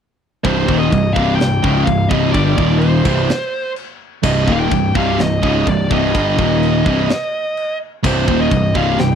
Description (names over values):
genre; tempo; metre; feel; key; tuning
heavy metal; 126 BPM; 4/4; straight; C minor; A4 = 440 Hz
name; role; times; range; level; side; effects
high-gain lead guitar; melody; 0.4-9.2 s; C5 to G5; -20 LUFS; equal; distortion, slapback echo
distorted electric guitar; riff; 0.4-9.2 s; C2 to G3; -20 LUFS; right 13 dB; overdrive
sludgy distorted guitar; riff; 0.4-9.2 s; C2 to G3; -19 LUFS; left 8 dB; overdrive
sludgy distorted guitar; riff; 0.4-9.2 s; C2 to G3; -22 LUFS; equal; overdrive
tight metal drum kit; drums; 0.4-9.1 s; china cymbal, crash cymbal, kick drum, snare drum; -22 LUFS; equal; none
fuzz picked electric bass; bass; 0.5-9.2 s; C1 to G1; -19 LUFS; equal; overdrive
room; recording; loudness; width
little or no reverb; dry, close 1970s-style studio recording; -13 LUFS; side -8 dB against mid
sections
0.4-9.2 A section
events
none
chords
0.4 Cm; 2.6 Eb5; 3.1 Cm; 6.4 Eb5; 6.9 Cm